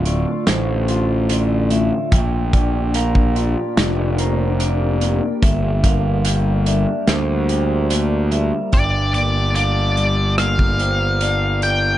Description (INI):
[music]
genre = post-rock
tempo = 73 BPM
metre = 4/4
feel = straight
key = unclear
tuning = A4 = 442 Hz
[part]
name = shimmering ambient pad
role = sustained chords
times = 0.0-8.7 s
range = D3 to Bb4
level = -28 LUFS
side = left 1 dB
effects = chorus, built-in reverb
[part]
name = electric guitar through a small old amp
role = arpeggios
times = 0.0-12.0 s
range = D2 to Bb4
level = -25 LUFS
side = left 3 dB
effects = spring reverb, tape echo
[part]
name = vibraphone with hard mallets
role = arpeggios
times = 0.0-12.0 s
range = C5 to G5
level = -27 LUFS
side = right 5 dB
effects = tape echo
[part]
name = fuzz picked electric bass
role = bass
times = 0.0-12.0 s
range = D1 to D2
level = -18 LUFS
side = equal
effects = overdrive
[part]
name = loose indie drum kit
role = drums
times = 0.1-11.8 s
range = hi-hat, kick drum, rim click, snare drum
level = -19 LUFS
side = equal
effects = none
[part]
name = octave-fuzz lead guitar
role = melody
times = 8.7-12.0 s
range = D5 to G5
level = -20 LUFS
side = left 1 dB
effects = distortion, tape echo
[sound]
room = little or no reverb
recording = dark, warm production, nothing above 10.8 kHz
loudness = -16 LUFS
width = side -13 dB against mid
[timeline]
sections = 0.0-8.7 A section; 8.7-12.0 B section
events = none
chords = 0.0 Dm; 2.1 Bb6; 5.4 Gm; 8.7 Gm7